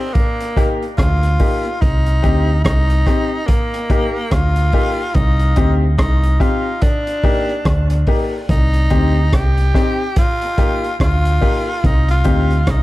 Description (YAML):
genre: roots reggae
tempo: 72 BPM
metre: 4/4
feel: swing 59% on 16ths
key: C minor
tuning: A4 = 442 Hz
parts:
  - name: raspy tenor saxophone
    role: melody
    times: 0.0-12.8 s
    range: Bb3 to G4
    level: -22 LUFS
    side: equal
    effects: dub echo
  - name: crunchy breakbeat drum kit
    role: drums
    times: 0.2-12.8 s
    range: hi-hat, kick drum, rim click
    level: -17 LUFS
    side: equal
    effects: none
  - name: bright baby grand piano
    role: stabs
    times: 0.6-12.5 s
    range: Bb3 to G4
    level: -22 LUFS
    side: left 4 dB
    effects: none
  - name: deep dub fingered electric bass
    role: bass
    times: 1.0-12.8 s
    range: C2 to D2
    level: -15 LUFS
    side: equal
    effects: none
room: small room ambience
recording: echo-heavy mix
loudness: -13 LUFS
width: side -17 dB against mid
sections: 0.0-12.8 A section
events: none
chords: 0.1 Eb; 1.8 Cm; 3.5 Eb; 5.2 Cm; 6.8 Eb; 8.5 Cm; 10.2 Eb; 11.8 Cm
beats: 0.15 0.98 | 1.82 2.65 3.49 4.32 | 5.16 5.99 6.83 7.66 | 8.49 9.33 10.16 11.00 | 11.83 12.67